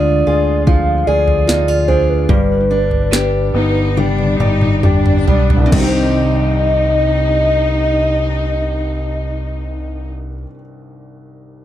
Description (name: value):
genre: pop ballad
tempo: 67-76 BPM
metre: 4/4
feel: straight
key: C harmonic minor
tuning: A4 = 440 Hz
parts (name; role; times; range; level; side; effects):
- hollow clarinet-like synth lead; melody; 0.0-10.1 s; B4 to F5; -18 LUFS; equal; chorus
- warm baby grand piano; accompaniment; 0.0-11.6 s; C2 to D5; -22 LUFS; left 1 dB; none
- fingerpicked steel-string acoustic guitar; arpeggios; 0.0-10.6 s; G2 to Ab4; -23 LUFS; equal; ping-pong delay
- fingered electric bass; bass; 0.0-10.4 s; G1 to D2; -18 LUFS; equal; none
- smooth R&B drum kit; drums; 0.7-5.9 s; crash cymbal, kick drum, snare drum, toms; -16 LUFS; equal; none
- warm studio cello section; second line; 3.1-10.1 s; D4 to Eb4; -22 LUFS; left 3 dB; none
room: little or no reverb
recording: dark, warm production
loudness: -12 LUFS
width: side -12 dB against mid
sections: 0.0-5.7 A section; 5.7-9.3 B section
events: slowing down 0.0-5.7; drum fill 4.0-5.7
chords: 0.0 Ddim; 2.3 G; 5.7 Cm